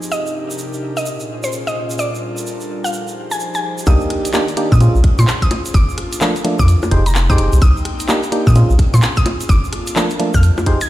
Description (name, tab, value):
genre	UK garage, two-step garage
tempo	128 BPM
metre	4/4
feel	swing 63% on 16ths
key	C minor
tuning	A4 = 440 Hz
part	airy breathy pad	sustained chords	0.0-10.9 s	Bb2 to G5	-27 LUFS	left 1 dB	chorus, sidechain pumping
part	tube shaker	percussion	0.0-10.9 s	none	-31 LUFS	right 3 dB	none
part	mallet-like synth pluck	melody	0.1-10.9 s	C5 to Ab6	-24 LUFS	equal	chorus, dub echo
part	percussive organ stab	stabs	3.9-10.8 s	F3 to C5	-20 LUFS	right 1 dB	chorus, dub echo
part	saturated sub bass	bass	3.9-10.5 s	F1 to Bb2	-12 LUFS	equal	none
part	electronic kick drum	drums	3.9-10.8 s	none	-14 LUFS	equal	none
part	garage drum kit	drums	3.9-10.9 s	bongos, handclaps, hi-hat, rim click	-22 LUFS	left 1 dB	low-pass filter on snare, low-pass filter on hats, low-pass filter on perc
room	digital ambience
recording	played on a big sound system in a bare room, stone room reverb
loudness	-13 LUFS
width	side -15 dB against mid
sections	0.0-3.9 A section; 3.9-10.9 B section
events	drop 3.9-10.9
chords	0.1 Cm9; 1.1 Bbm9; 2.0 Gm9; 2.9 Fm9; 3.9 Cm9; 4.8 Bbm9; 5.7 Gm9; 6.7 Fm9; 7.6 Cm9; 8.6 Bbm9; 9.5 Gm9